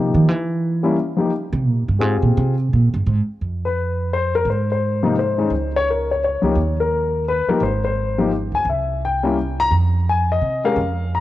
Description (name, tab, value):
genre	jazz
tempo	171 BPM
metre	3/4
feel	swing 63% on 8ths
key	F minor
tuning	A4 = 442 Hz
part	dark grand piano	melody	0.0-11.2 s	C3 to Bb5	-20 LUFS	left 4 dB	cassette tape
part	upright bass	bass	0.0-11.2 s	Ab1 to E3	-20 LUFS	right 2 dB	none
room	light reverb, small room ambience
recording	home recording on cassette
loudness	-17 LUFS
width	side -14 dB against mid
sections	0.0-3.4 A section; 3.4-11.2 B section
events	upright bass solo 0.0-3.4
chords	0.3 Edim; 1.3 Fm; 3.4 N.C.; 4.5 Ab; 5.5 Db5; 6.6 Eb5; 7.6 Ab; 8.7 C7; 9.7 Fm7